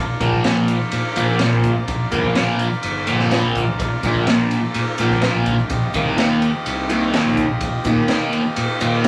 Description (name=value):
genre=psychedelic rock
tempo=126 BPM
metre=4/4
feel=straight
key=Bb major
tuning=A4 = 440 Hz
part: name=combo organ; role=sustained chords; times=0.0-9.1 s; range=F4 to Eb5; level=-30 LUFS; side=equal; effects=none
part: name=fuzz fingered electric bass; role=bass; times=0.0-9.1 s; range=G1 to Bb2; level=-27 LUFS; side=equal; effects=overdrive
part: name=fuzz guitar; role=riff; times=0.2-9.1 s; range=Bb2 to Eb4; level=-21 LUFS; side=equal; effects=distortion, phaser
part: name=raw garage drum kit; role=drums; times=0.2-9.1 s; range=kick drum, ride cymbal, snare drum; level=-25 LUFS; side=equal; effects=none
part: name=egg shaker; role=percussion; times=0.2-9.1 s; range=none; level=-53 LUFS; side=equal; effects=none
room=moderate large studio reverb, RT60 0.9 s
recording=none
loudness=-19 LUFS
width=mono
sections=0.0-9.1 A section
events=none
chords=0.0 Bb; 5.7 Ebadd9/Bb